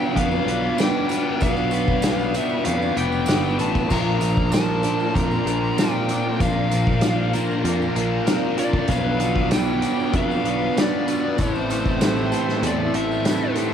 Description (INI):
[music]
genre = rock, shoegaze and dream pop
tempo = 96 BPM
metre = 4/4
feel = straight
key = unclear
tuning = A4 = 438 Hz
[part]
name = fuzz lead guitar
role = melody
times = 0.0-13.5 s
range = C5 to Bb5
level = -28 LUFS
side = left 1 dB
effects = distortion, cassette tape, analog delay
[part]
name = phased analog pad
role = sustained chords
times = 0.0-13.7 s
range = A4 to D6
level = -33 LUFS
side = equal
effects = phaser, chorus, cassette tape
[part]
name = mellow electric guitar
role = arpeggios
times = 0.0-13.7 s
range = E3 to G4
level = -31 LUFS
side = right 7 dB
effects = none
[part]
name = biting overdriven guitar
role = riff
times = 0.0-13.7 s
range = A2 to B3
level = -26 LUFS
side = equal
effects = phaser, cassette tape
[part]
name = crunchy overdriven guitar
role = riff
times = 0.0-13.7 s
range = A2 to C5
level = -29 LUFS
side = right 8 dB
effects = reverse reverb, cassette tape
[part]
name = overdriven electric guitar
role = riff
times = 0.0-13.7 s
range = A2 to B4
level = -26 LUFS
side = left 8 dB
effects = analog chorus, cassette tape
[part]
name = tambourine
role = percussion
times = 0.0-13.7 s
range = none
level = -41 LUFS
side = right 8 dB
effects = none
[part]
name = picked electric bass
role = bass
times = 0.2-13.2 s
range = F1 to F2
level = -26 LUFS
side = equal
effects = none
[part]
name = loose indie drum kit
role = drums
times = 0.2-13.7 s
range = crash cymbal, hi-hat, kick drum, snare drum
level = -24 LUFS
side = equal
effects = cassette tape
[sound]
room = small room reverb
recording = home recording on cassette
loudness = -19 LUFS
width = side -8 dB against mid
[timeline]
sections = 0.0-13.7 A section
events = none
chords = 0.0 Bdim; 3.9 Bbadd9; 8.9 Bdim; 11.4 Am7